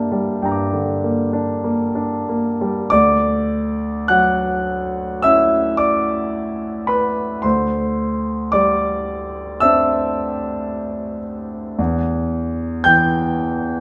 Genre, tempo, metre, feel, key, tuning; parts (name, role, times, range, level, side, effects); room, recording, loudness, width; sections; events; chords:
classical, impressionist solo piano; 45-60 BPM; 4/4; rubato; D major; A4 = 440 Hz
clear concert grand piano; solo; 0.0-13.8 s; D2 to G6; -19 LUFS; equal
wet recital hall reverb, RT60 1.4 s; -19 LUFS; mono
0.0-2.9 A section; 2.9-13.8 B section
0.0 Gm6; 2.9 Dmaj9; 7.4 Cadd9/D; 11.8 Em